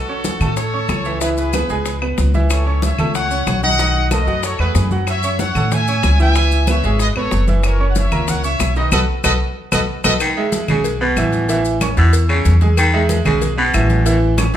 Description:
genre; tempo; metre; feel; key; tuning
latin, salsa; 187 BPM; 4/4; straight; unclear; A4 = 444 Hz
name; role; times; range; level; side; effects
clear trumpet section; melody; 0.0-10.1 s; F#4 to G#5; -21 LUFS; left 1 dB; none
bright concert grand piano; accompaniment; 0.1-14.6 s; D#3 to E6; -21 LUFS; right 2 dB; none
congas; percussion; 0.1-14.5 s; none; -24 LUFS; equal; none
bongos and cowbell; percussion; 0.2-14.6 s; none; -29 LUFS; left 4 dB; none
maracas; percussion; 0.2-14.6 s; none; -30 LUFS; left 6 dB; none
upright bass; bass; 0.4-14.6 s; F#1 to A2; -17 LUFS; equal; none
claves; percussion; 0.4-14.5 s; none; -26 LUFS; left 4 dB; none
raspy baritone saxophone; second line; 10.2-14.6 s; B2 to D#3; -20 LUFS; left 1 dB; none
room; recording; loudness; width
moderate large studio reverb, RT60 1.2 s; band playing live in one room; -14 LUFS; side -11 dB against mid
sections
0.0-10.2 A section; 10.2-14.6 B section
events
band accent 8.9-10.2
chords
0.0 F#m7; 1.2 C#m7; 2.5 F#m7/C#; 3.8 B7; 5.1 F#m7; 6.4 C#m7; 7.6 F#7; 8.9 B7; 10.2 E; 11.5 A

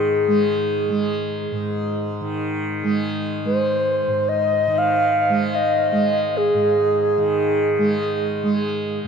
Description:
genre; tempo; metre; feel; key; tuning
world meditative, free-time meditation music; free time; none; none; unclear; A4 = 440 Hz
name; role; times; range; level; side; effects
mellow reedy alto flute; melody; 0.0-9.0 s; Ab4 to F5; -19 LUFS; equal; diffuse ambient delay
tanpura; drone; 0.0-9.1 s; Ab2 to Ab3; -23 LUFS; right 2 dB; none
room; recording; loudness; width
wet huge ambient reverb, RT60 7.9 s; dark, warm production; -18 LUFS; side -6 dB against mid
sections
0.0-2.2 A section; 2.2-9.1 A section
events
none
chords
none

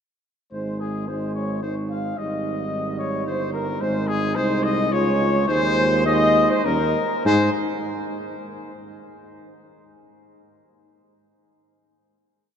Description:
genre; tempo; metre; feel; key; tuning
classical, brass quintet; 98-111 BPM; 3/4; rubato; Ab major; A4 = 440 Hz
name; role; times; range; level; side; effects
warm trumpet; melody; 0.5-7.5 s; Ab4 to F5; -25 LUFS; left 5 dB; none
mellow flugelhorn; second line; 0.5-7.5 s; Ab4 to F5; -27 LUFS; right 4 dB; none
clear trombone; accompaniment; 0.5-7.5 s; G3 to Ab3; -29 LUFS; right 2 dB; none
dark French horn; accompaniment; 0.5-7.5 s; Db4 to F4; -28 LUFS; equal; none
warm tuba; bass; 0.5-7.5 s; G1 to Ab2; -26 LUFS; equal; none
room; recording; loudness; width
wet cathedral reverb, RT60 5.4 s; in a vast, echoing space; -20 LUFS; side -8 dB against mid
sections
0.5-7.3 A section; 7.3-9.0 final chord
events
none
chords
0.5 Ab5; 2.2 Eb/Ab; 3.8 Ab; 4.9 Db; 5.5 Ab/Eb; 6.6 Eb7; 7.3 Ab5

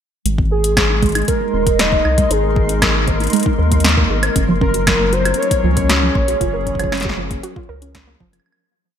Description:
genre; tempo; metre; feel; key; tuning
IDM; 117 BPM; 4/4; straight; Ab mixolydian; A4 = 440 Hz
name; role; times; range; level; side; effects
hollow soft pad; sustained chords; 0.5-8.5 s; Gb3 to Eb5; -24 LUFS; equal; chorus
warbly dusty pluck; arpeggios; 0.3-8.5 s; F3 to C5; -24 LUFS; right 4 dB; chorus, digital delay
round analog bass; bass; 0.3-8.4 s; Eb1 to Eb2; -19 LUFS; equal; none
electro analog drum machine; drums; 0.3-8.6 s; hi-hat, snare drum, woodblock; -19 LUFS; equal; ping-pong delay
flickering grainy texture; texture; 0.6-8.5 s; Bb3 to C6; -28 LUFS; left 1 dB; built-in reverb, analog chorus
electronic kick drum; drums; 0.4-8.3 s; none; -20 LUFS; equal; none
warbly nostalgic lead; melody; 0.5-7.9 s; Ab4 to Eb5; -20 LUFS; left 1 dB; chorus, ping-pong delay
room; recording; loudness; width
moderate lush hall reverb, RT60 1.7 s; bright 1980s-style digital production; -13 LUFS; side -8 dB against mid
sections
0.3-8.5 groove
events
filter sweep on synth arpeggio sound 0.3-8.5; fade-out 5.7-8.5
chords
0.3 Abadd9; 4.4 Gbmaj7

